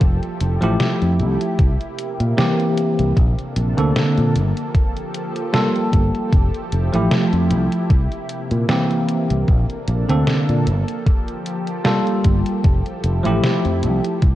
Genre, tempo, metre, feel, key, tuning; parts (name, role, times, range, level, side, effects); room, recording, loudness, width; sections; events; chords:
vaporwave; 76 BPM; 4/4; swing 55% on 16ths; F major; A4 = 440 Hz
lush unison pad; sustained chords; 0.0-14.3 s; C3 to A4; -27 LUFS; equal; chorus, phaser
fingered electric bass; bass; 0.0-14.3 s; F1 to Bb2; -19 LUFS; equal
detuned 8-bit digital drum machine; drums; 0.0-14.3 s; hi-hat, snare drum; -23 LUFS; equal; overdrive, gated reverb
electronic kick drum; drums; 0.0-14.3 s; -16 LUFS; equal; overdrive
bell-like tine electric piano; accompaniment; 0.6-14.2 s; D3 to A4; -20 LUFS; equal; medium stereo tremolo, lush chorus, analog delay
light reverb; cassette tape; -16 LUFS; side -14 dB against mid
0.0-14.3 A section
0.0 Fmaj9; 1.6 C7; 3.2 Bbmaj9; 4.4 Gm9; 6.3 Fmaj9; 7.9 C7; 9.5 Bbmaj9; 10.7 Gm9; 12.6 Fmaj9